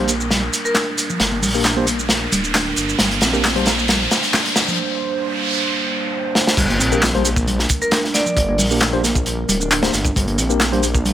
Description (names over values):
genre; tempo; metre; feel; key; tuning
breakbeat, breaks; 134 BPM; 4/4; straight; G minor; A4 = 441 Hz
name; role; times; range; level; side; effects
dark analog pad; sustained chords; 0.0-11.1 s; G3 to C5; -27 LUFS; right 3 dB; lush chorus, sidechain pumping
picked electric bass; riff; 0.0-11.1 s; F3 to D4; -24 LUFS; equal; low-pass filter, digital delay
mellow tine electric piano; stabs; 0.0-3.7, 6.9-10.9 s; Bb3 to C5; -23 LUFS; left 2 dB; medium stereo tremolo, vintage 12-bit sampler grit, digital delay
detuned saw bass; bass; 0.0-11.1 s; D1 to Bb1; -24 LUFS; equal; none
riser, noise sweep and impact; sound effects; 0.0-8.4 s; none; -23 LUFS; right 1 dB; none
crunchy breakbeat drum kit; drums; 0.1-11.1 s; crash cymbal, hi-hat, kick drum, snare drum; -19 LUFS; equal; none
electronic shaker and handclaps; drums; 0.1-11.1 s; none; -21 LUFS; right 1 dB; overdrive
vibraphone with medium hard mallets; melody; 0.7-0.8, 7.8-8.6 s; Bb4 to D5; -22 LUFS; equal; old record sound, vintage 12-bit sampler grit, low-pass filter, digital delay
room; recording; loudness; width
moderate small room reverb, RT60 0.6 s; none; -15 LUFS; side -11 dB against mid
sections
0.0-6.6 A section; 6.6-11.1 B section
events
build-up 0.0-6.6; drum fill 0.0-4.8, 6.4; riser 0.0-4.8; filter sweep on picked electric bass 0.0-6.6; filter sweep on analog synth pad 0.0-6.6; break 4.8-6.6; noise sweep 4.8-6.6; drop 6.6-11.1; impact 6.6-8.4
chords
0.0 Gm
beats
0.31 0.76 | 1.21 1.65 2.10 2.55 | 3.00 3.44 3.89 4.34 | 4.79 5.24 5.68 6.13 | 6.58 7.03 7.47 7.92 | 8.37 8.82 9.27 9.71 | 10.16 10.61 11.06